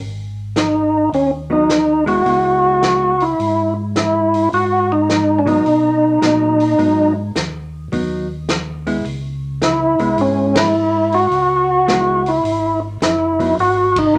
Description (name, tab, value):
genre	soul jazz organ trio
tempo	106 BPM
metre	4/4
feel	swing 66% on 8ths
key	G# minor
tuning	A4 = 435 Hz
part	mellow tonewheel organ	bass	0.0-14.2 s	F#1 to B2	-27 LUFS	equal	slow rotary speaker
part	vintage drum kit	drums	0.0-14.1 s	hi-hat, kick drum, ride cymbal, snare drum	-26 LUFS	equal	none
part	percussive tonewheel organ	melody	0.6-14.2 s	C#4 to F#4	-16 LUFS	equal	slow rotary speaker, overdrive
part	hollow-body jazz guitar	accompaniment	1.5-14.2 s	F#3 to E4	-25 LUFS	equal	none
room	moderate club reverb, RT60 0.7 s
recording	none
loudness	-16 LUFS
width	mono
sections	0.0-14.2 A section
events	band accent 10.5, 13.9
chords	0.0 G#m; 2.3 C#m7; 4.5 G#m7; 9.1 C#m7; 13.6 G#7(no3)